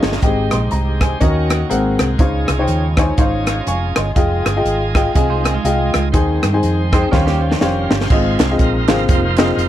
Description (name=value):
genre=uptempo gospel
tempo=122 BPM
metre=4/4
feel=swing 60% on 8ths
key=Ab major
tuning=A4 = 440 Hz
part: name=clear baby grand piano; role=accompaniment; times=0.0-9.6 s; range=Ab2 to Db6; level=-18 LUFS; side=left 3 dB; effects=none
part: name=bright tonewheel organ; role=sustained chords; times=0.0-9.7 s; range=C3 to Eb5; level=-25 LUFS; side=right 4 dB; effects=slow rotary speaker, overdrive
part: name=warm studio string section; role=sustained chords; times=0.0-8.1 s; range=G3 to C5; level=-31 LUFS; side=right 2 dB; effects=none
part: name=hollow-body short-scale fingered electric bass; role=bass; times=0.0-9.7 s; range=F1 to G2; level=-19 LUFS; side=right 1 dB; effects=none
part: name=crisp fusion drum kit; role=drums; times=0.0-9.7 s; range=crash cymbal, hi-hat, kick drum, rim click, snare drum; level=-17 LUFS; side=right 1 dB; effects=none
part: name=clean electric guitar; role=second line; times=5.2-8.1 s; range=F3 to C5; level=-26 LUFS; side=right 8 dB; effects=spring reverb
part: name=group handclap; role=percussion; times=8.4-9.5 s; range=none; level=-29 LUFS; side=right 18 dB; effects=none
room=little or no reverb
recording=none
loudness=-13 LUFS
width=side -12 dB against mid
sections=0.0-8.1 A section; 8.1-9.7 B section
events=drum fill 0.0, 7.1-8.1; tonewheel organ fill 0.0; grand piano fill 3.2-4.2; tonewheel organ solo 8.1-9.7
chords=0.2 Abmaj7; 1.2 Ebm7; 1.7 Ab9; 2.2 Fm9; 6.1 Ab/Eb; 7.1 Eb13; 8.1 Ab6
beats=| 0.23 0.72 1.21 1.70 | 2.19 2.69 3.18 3.67 | 4.16 4.65 5.15 5.64 | 6.13 6.62 7.12 7.61 | 8.10 8.59 9.08 9.57